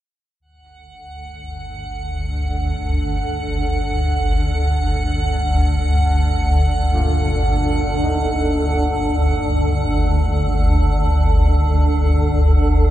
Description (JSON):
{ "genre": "dark ambient drone", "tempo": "free time", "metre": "none", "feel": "none", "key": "unclear", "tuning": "A4 = 441 Hz", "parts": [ { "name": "swarming drone", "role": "drone", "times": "1.5-12.9 s", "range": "G1 to D2", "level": "-16 LUFS", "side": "equal", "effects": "built-in reverb" }, { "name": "icy glass pad", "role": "texture", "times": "0.9-12.9 s", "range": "Gb5", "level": "-26 LUFS", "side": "right 2 dB", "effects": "chorus, built-in reverb" }, { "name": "clear grand piano", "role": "arpeggios", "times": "6.9-12.9 s", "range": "Bb2 to Eb4", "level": "-32 LUFS", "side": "left 2 dB", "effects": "none" } ], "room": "wet cathedral reverb, RT60 6.8 s", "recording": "dark, warm production", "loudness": "-16 LUFS", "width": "side -13 dB against mid", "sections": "0.4-12.9 A section", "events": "fade-out on ambient pad 0.4-12.9", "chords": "0.4 Ebm", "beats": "free time" }